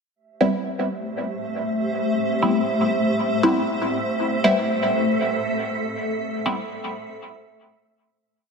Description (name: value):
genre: dub techno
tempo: free time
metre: none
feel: none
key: A minor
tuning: A4 = 440 Hz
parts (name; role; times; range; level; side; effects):
- granular cloud pad; sustained chords; 1.0-8.2 s; A3 to C5; -24 LUFS; left 2 dB; built-in reverb
- wind-like tuned noise texture; texture; 1.0-8.2 s; E5; -29 LUFS; right 5 dB; built-in reverb
- filtered dub chord stab; stabs; 0.4-6.5 s; G3 to E4; -23 LUFS; equal; chorus, phaser, dub echo
room: moderate lush hall reverb, RT60 2.3 s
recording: none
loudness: -20 LUFS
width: side -5 dB against mid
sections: 0.2-8.2 groove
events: fade-out 5.5-8.2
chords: 0.2 Am7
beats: free time